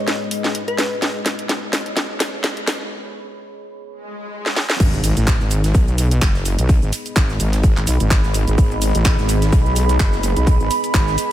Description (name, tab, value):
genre	bass house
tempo	127 BPM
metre	4/4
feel	swing 56% on 16ths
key	G# minor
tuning	A4 = 440 Hz
part	dark analog pad	sustained chords	0.0-11.3 s	G#3 to G#5	-34 LUFS	left 4 dB	chorus, sidechain pumping
part	deep dark ambient pad	texture	0.0-11.3 s	B3 to B5	-26 LUFS	right 2 dB	chorus, built-in reverb, sidechain pumping
part	house drum kit	drums	0.1-11.3 s	crash cymbal, handclaps, hi-hat, shaker, snare drum	-22 LUFS	equal	none
part	glassy wavetable pluck	melody	0.7-1.0 s	B4	-28 LUFS	left 1 dB	chorus, cassette tape, dub echo
part	swell and impact	sound effects	4.0-6.7 s	none	-30 LUFS	equal	none
part	wobble bass	bass	4.8-11.2 s	F#1 to B1	-18 LUFS	equal	chorus, overdrive, sidechain pumping
part	electronic kick drum	drums	4.8-11.0 s	none	-16 LUFS	equal	none
part	oversized low-tuned drum kit	drums	4.8-11.3 s	hi-hat, snare drum	-35 LUFS	left 2 dB	sidechain pumping on hats, high-pass filter on hats, high-pass filter on snare, high-pass filter on room
room	light reverb, digital ambience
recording	high-pass filter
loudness	-15 LUFS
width	side -12 dB against mid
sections	0.0-4.8 A section; 4.8-11.3 B section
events	build-up 0.0-4.8; drum fill 0.0-2.9, 4.4-4.8; filter sweep on analog synth pad 0.0-4.8; break 2.9-4.8; swell 4.0-4.8; drop 4.8-11.3; impact 4.8-6.7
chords	0.0 G#m